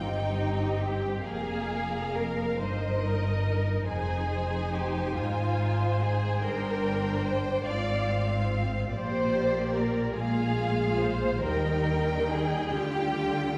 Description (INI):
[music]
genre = classical, slow romantic movement for string orchestra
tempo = 47 BPM (dotted quarters)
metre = 6/8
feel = uneven beats, rubato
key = Eb major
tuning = A4 = 440 Hz
[part]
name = rich symphonic violin section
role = melody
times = 0.0-13.6 s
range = D5 to Ab5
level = -40 LUFS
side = equal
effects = none
[part]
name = warm symphonic violin section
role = second line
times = 0.0-13.6 s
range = Eb4 to D5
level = -34 LUFS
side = equal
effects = none
[part]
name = rich symphonic viola section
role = accompaniment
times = 0.0-13.6 s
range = G3 to C5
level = -36 LUFS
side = equal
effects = none
[part]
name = rich studio double bass section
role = bass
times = 0.0-13.6 s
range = F1 to Eb2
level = -35 LUFS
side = equal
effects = none
[part]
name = warm symphonic cello section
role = bass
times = 0.0-13.6 s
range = F2 to Eb3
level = -34 LUFS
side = equal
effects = none
[sound]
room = wet scoring stage reverb, RT60 1.9 s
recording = heard from further back in the room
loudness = -28 LUFS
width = mono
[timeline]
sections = 0.0-13.6 A section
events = none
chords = 0.0 Eb; 1.3 Bb5/F; 2.6 Eb/G; 3.9 Fm7; 6.4 C5/G; 7.7 Fm/Ab; 8.9 Bb; 10.2 Bb5; 11.4 Eb; 12.7 G5/D